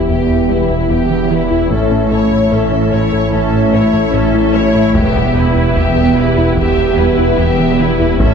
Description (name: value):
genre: cinematic, hybrid orchestral and electronic film score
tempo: 74 BPM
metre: 4/4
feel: straight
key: E dorian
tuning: A4 = 440 Hz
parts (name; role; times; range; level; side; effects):
- clear studio violin section; melody; 0.0-8.3 s; B4 to E5; -23 LUFS; left 4 dB; low-pass filter
- rich symphonic violin section; second line; 0.0-8.3 s; E4 to C#5; -20 LUFS; left 1 dB; none
- rich symphonic viola section; accompaniment; 0.0-8.3 s; B3 to E4; -19 LUFS; right 3 dB; low-pass filter
- brassy analog pad; sustained chords; 0.0-8.3 s; E3 to E5; -21 LUFS; right 1 dB; chorus, low-pass filter
- warm French horn section; sustained chords; 0.0-8.3 s; B3 to G4; -21 LUFS; left 4 dB; low-pass filter
- saturated sub bass; bass; 0.0-8.3 s; E1 to A1; -23 LUFS; equal; none
- thumb-piano-like synth pluck; arpeggios; 0.1-8.3 s; E3 to A4; -22 LUFS; left 5 dB; chorus, low-pass filter
- rubbery square bass; riff; 0.1-8.3 s; E2 to A3; -20 LUFS; right 2 dB; low-pass filter
- rich symphonic double bass section; bass; 0.1-8.3 s; E1 to A1; -20 LUFS; right 3 dB; none
- warm symphonic cello section; bass; 0.1-8.3 s; E2 to A2; -18 LUFS; equal; none
- taiko ensemble; drums; 5.0-8.3 s; none; -20 LUFS; equal; none
room: wet scoring stage reverb, RT60 1.7 s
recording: heard from further back in the room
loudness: -10 LUFS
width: side -6 dB against mid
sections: 0.0-8.3 A section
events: filter sweep 0.0-8.3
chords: 0.0 Em; 1.7 A; 5.0 Em